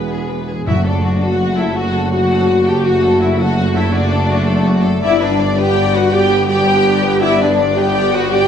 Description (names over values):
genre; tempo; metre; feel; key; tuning
cinematic, heroic adventure film score; 110 BPM (dotted quarters); 12/8; straight; unclear; A4 = 440 Hz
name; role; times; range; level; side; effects
warm symphonic violin section; melody; 0.0-8.5 s; F#4 to D5; -22 LUFS; left 5 dB; none
rich symphonic violin section; second line; 0.0-8.5 s; B4 to G5; -23 LUFS; left 2 dB; none
clear symphonic viola section; accompaniment; 0.0-8.5 s; B3 to G4; -22 LUFS; right 1 dB; none
bright trombone section; sustained chords; 0.0-8.5 s; D3 to B3; -24 LUFS; right 1 dB; none
dark French horn section; sustained chords; 0.0-8.5 s; B3 to G4; -18 LUFS; left 2 dB; none
mellow tuba; bass; 0.0-8.5 s; E1 to G1; -21 LUFS; right 2 dB; none
rich studio double bass section; bass; 0.0-8.5 s; E1 to G1; -22 LUFS; right 1 dB; none
warm symphonic cello section; bass; 0.0-8.5 s; E2 to G2; -21 LUFS; equal; none
timpani; percussion; 0.7-1.2 s; F#2; -21 LUFS; left 1 dB; none
room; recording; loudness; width
wet scoring stage reverb, RT60 1.8 s; none; -12 LUFS; side -8 dB against mid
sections
0.0-8.5 A section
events
none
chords
0.0 E; 0.7 D/F#; 5.0 G